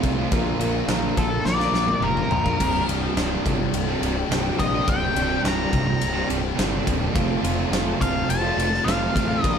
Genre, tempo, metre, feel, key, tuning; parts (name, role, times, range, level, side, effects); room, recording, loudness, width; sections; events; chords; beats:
quiet-loud alternative rock; 105 BPM; 4/4; straight; A4 = 438 Hz
crunchy overdriven guitar; riff; 0.0-9.6 s; C2 to Bb4; -26 LUFS; right 6 dB
thick fuzz guitar; riff; 0.0-9.6 s; C2 to Bb4; -29 LUFS; left 8 dB; distortion
fuzz picked electric bass; bass; 0.0-9.6 s; C1 to C2; -27 LUFS; equal; overdrive
big rock drum kit; drums; 0.0-9.6 s; crash cymbal, kick drum, ride cymbal, snare drum, toms; -26 LUFS; left 1 dB
octave-fuzz lead guitar; melody; 1.2-9.6 s; A4 to Bb5; -25 LUFS; left 2 dB; distortion
rich studio string section; sustained chords; 2.6-9.6 s; F4 to A5; -34 LUFS; left 3 dB
moderate stone room reverb, RT60 1.3 s; band playing live in one room; -20 LUFS; side -7 dB against mid
0.0-9.6 A section
lead electric guitar solo 0.0-9.6; drum fill 1.5-2.6
0.3 Bb; 2.6 Csus2; 7.2 F
| 0.32 0.89 1.46 2.02 | 2.59 3.16 3.73 4.30 | 4.87 5.44 6.01 6.58 | 7.15 7.72 8.29 8.86 | 9.43